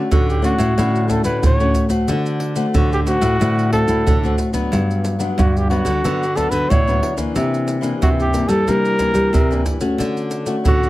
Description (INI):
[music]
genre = samba and choro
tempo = 91 BPM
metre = 4/4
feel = straight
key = D major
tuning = A4 = 441 Hz
[part]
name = nylon-string guitar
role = accompaniment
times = 0.0-10.9 s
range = G2 to F#4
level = -22 LUFS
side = left 2 dB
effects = none
[part]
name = dark trumpet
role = melody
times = 0.1-10.9 s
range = F#4 to C#5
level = -20 LUFS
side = equal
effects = none
[part]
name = nylon-string guitar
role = bass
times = 0.1-10.9 s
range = G2 to G3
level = -20 LUFS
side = left 1 dB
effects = none
[part]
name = maracas, surdo and pandeiro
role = percussion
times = 0.1-10.9 s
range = none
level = -19 LUFS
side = right 1 dB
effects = none
[sound]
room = light reverb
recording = close, detailed microphones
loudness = -15 LUFS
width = side -16 dB against mid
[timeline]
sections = 0.0-10.9 A section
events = none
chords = 0.0 Dmaj7; 2.1 D7; 4.7 Gmaj7; 7.4 C9; 10.0 Dmaj7